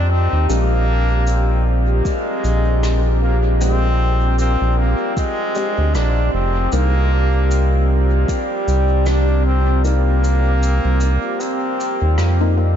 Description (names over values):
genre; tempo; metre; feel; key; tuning
ambient dub; 77 BPM; 4/4; swing 57% on 16ths; unclear; A4 = 440 Hz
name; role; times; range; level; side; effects
brilliant trombone; melody; 0.0-12.6 s; G3 to D4; -23 LUFS; left 1 dB; dub echo
deep dark ambient pad; sustained chords; 0.0-12.8 s; C4 to D5; -23 LUFS; equal; chorus, built-in reverb
round analog bass; bass; 0.0-12.8 s; F1 to F2; -16 LUFS; equal; none
filtered dub chord stab; stabs; 0.5-12.8 s; Ab3 to G4; -30 LUFS; left 3 dB; none
shaker and rim click; drums; 0.5-12.4 s; none; -34 LUFS; equal; dub echo
electronic kick drum; drums; 2.1-8.5 s; none; -22 LUFS; equal; none
room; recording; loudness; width
light reverb; nothing above 7.5 kHz; -15 LUFS; side -9 dB against mid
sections
0.0-12.8 A section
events
kick drops out 9.8-12.8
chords
0.5 Bb13; 6.7 Cm7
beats
| 0.49 1.27 2.05 2.83 | 3.61 4.39 5.17 5.95 | 6.73 7.51 8.29 9.07 | 9.85 10.62 11.40 12.18